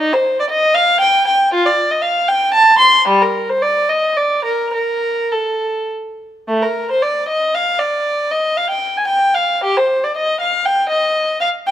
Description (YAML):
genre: classical, baroque-style suite movement for unaccompanied violin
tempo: 102-121 BPM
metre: 3/4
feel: rubato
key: Bb major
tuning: A4 = 441 Hz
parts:
  - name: dark violin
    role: solo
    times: 0.0-11.7 s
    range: G3 to C6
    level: -13 LUFS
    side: equal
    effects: none
room: light reverb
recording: close, detailed microphones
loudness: -13 LUFS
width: side -11 dB against mid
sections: 0.0-6.5 A section; 6.5-11.7 B section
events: none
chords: none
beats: | 0.01 0.53 1.04 | 1.55 2.05 2.56 | 3.10 3.65 4.19 | 4.76 5.34 5.92 | 6.49 7.02 7.54 | 8.06 8.58 9.09 | 9.63 10.16 10.66 | 11.16 11.67